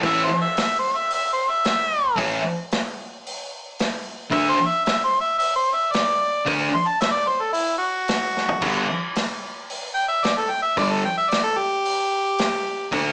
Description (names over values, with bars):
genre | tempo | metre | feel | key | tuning
garage rock duo or trio | 112 BPM | 4/4 | straight | unclear | A4 = 441 Hz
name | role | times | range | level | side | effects
thick fuzz guitar | riff | 0.0-13.1 s | G2 to D4 | -25 LUFS | equal | distortion
vintage drum kit | drums | 0.0-13.0 s | crash cymbal, hi-hat, kick drum, snare drum, toms | -29 LUFS | equal | none
clear harmonica | melody | 0.1-12.9 s | E4 to C6 | -23 LUFS | equal | overdrive
room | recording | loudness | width
light reverb | band playing live in one room, small speaker sound | -22 LUFS | mono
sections
0.0-13.1 A section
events
drum fill 8.4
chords
0.0 A5; 4.3 D5; 8.6 G5